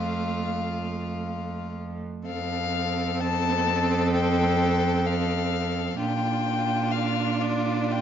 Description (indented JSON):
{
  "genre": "classical, slow romantic movement for string quartet",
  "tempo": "free time",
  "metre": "none",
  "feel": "none",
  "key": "F major",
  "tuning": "A4 = 440 Hz",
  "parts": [
    { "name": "dark violin", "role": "melody", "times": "0.0-8.0 s", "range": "D5 to A5", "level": "-29 LUFS", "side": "left 8 dB", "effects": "none" },
    { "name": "rich violin", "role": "second line", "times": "0.0-8.0 s", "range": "F4 to A4", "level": "-32 LUFS", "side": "left 2 dB", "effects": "none" },
    { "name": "warm viola", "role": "accompaniment", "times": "0.0-8.0 s", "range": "A3 to D4", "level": "-29 LUFS", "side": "right 2 dB", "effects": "none" },
    { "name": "rich cello", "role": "bass", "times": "0.0-8.0 s", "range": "F2 to Bb2", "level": "-28 LUFS", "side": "right 4 dB", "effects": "none" }
  ],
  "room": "moderate recital hall reverb, RT60 1.6 s",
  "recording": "nothing above 7.6 kHz",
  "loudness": "-23 LUFS",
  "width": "side -9 dB against mid",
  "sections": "0.0-2.3 A section; 2.3-8.0 A section",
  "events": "none",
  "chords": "0.0 F; 6.0 Bb"
}